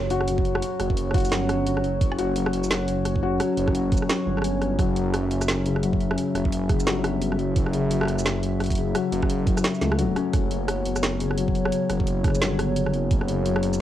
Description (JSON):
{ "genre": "half-time drum and bass", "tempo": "173 BPM", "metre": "4/4", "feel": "swing 60% on 16ths, half-time", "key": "unclear", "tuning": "A4 = 440 Hz", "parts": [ { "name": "dark analog pad", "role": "sustained chords", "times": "0.0-13.8 s", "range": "F#3 to E5", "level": "-28 LUFS", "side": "right 1 dB", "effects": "lush chorus, sidechain pumping, cassette tape" }, { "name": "dark detuned saw bass", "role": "bass", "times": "0.0-13.8 s", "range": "F#1 to C#2", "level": "-27 LUFS", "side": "right 1 dB", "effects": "none" }, { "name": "impact", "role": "sound effects", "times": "0.0-0.6 s", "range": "none", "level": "barely audible", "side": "none", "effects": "none" }, { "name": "felt-muted upright piano", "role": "arpeggios", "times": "0.1-13.8 s", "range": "C#3 to F#4", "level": "-27 LUFS", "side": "left 7 dB", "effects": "cassette tape, analog delay" }, { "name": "drum and bass drum kit", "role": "drums", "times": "0.1-13.8 s", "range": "hi-hat, rim click, shaker, snare drum", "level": "-28 LUFS", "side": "right 1 dB", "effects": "overdrive, studio reverb, cassette tape" }, { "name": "electronic kick drum", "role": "drums", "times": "0.4-13.2 s", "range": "none", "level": "-24 LUFS", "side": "right 1 dB", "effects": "overdrive, studio reverb, cassette tape" } ], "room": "moderate small room ambience, RT60 0.5 s", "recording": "home recording on cassette", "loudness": "-21 LUFS", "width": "side -12 dB against mid", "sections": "0.0-13.8 A section", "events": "impact 0.0-0.6", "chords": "0.0 F#5", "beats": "0.28 | 0.62 0.97 1.32 1.67 | 2.01 2.36 2.71 3.05 | 3.40 3.75 4.09 4.44 | 4.79 5.13 5.48 5.83 | 6.17 6.52 6.87 7.21 | 7.56 7.91 8.25 8.60 | 8.95 9.29 9.64 9.99 | 10.34 10.68 11.03 11.38 | 11.72 12.07 12.42 12.76 | 13.11 13.46 13.80" }